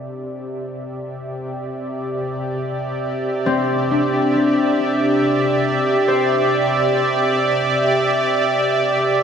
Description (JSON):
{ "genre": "ambient", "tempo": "free time", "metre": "none", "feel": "none", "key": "unclear", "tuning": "A4 = 440 Hz", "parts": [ { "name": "warm analog pad", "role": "sustained chords", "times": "0.0-9.2 s", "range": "C3 to E5", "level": "-18 LUFS", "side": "right 1 dB", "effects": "chorus, tremolo" }, { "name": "concert harp", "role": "arpeggios", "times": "3.5-8.9 s", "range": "C4 to C5", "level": "-21 LUFS", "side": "left 2 dB", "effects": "diffuse ambient delay" } ], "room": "wet huge ambient reverb, RT60 8.3 s", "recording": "lossy compression artefacts", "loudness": "-16 LUFS", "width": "side -7 dB against mid", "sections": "0.0-9.2 A section", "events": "fade-in on analog synth pad 0.0-9.2", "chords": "0.0 C" }